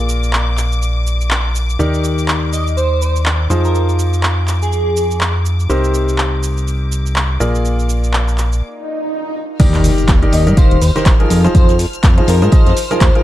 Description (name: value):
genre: piano house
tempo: 123 BPM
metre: 4/4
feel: swing 58% on 16ths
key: F dorian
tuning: A4 = 441 Hz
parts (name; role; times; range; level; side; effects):
- clear symphonic string section; sustained chords; 0.0-13.2 s; D6 to F6; -30 LUFS; left 6 dB; sidechain pumping
- bright grand piano; riff; 0.0-13.2 s; C3 to F5; -20 LUFS; left 1 dB; sidechain pumping, low-pass filter, tape echo
- fat analog bass; bass; 0.0-13.1 s; Eb1 to Ab2; -15 LUFS; equal; tube saturation, sidechain pumping
- punchy analog drum machine; drums; 0.1-13.2 s; crash cymbal, handclaps, hi-hat, shaker; -21 LUFS; equal; none
- airy dreamy lead; melody; 2.5-5.2, 10.3-13.2 s; Ab4 to Eb5; -21 LUFS; equal; chorus, tape echo
- swell and impact; sound effects; 8.8-11.5 s; none; -20 LUFS; equal; none
- electronic kick drum; drums; 9.6-13.1 s; none; -11 LUFS; equal; none
- jazz brush drum kit; drums; 9.6-13.1 s; hi-hat, snare drum, tambourine; -31 LUFS; left 2 dB; none
room: small room reverb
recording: dark, warm production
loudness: -12 LUFS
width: side -14 dB against mid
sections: 0.0-9.6 A section; 9.6-13.2 B section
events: break 8.6-9.6; swell 8.8-9.6; drop 9.6-13.2; impact 9.6-11.5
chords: 0.0 Bb7; 1.8 Ebmaj7; 3.5 Fm7; 5.7 Cm7; 7.4 Bb7; 9.6 Ebmaj7; 11.3 Fm7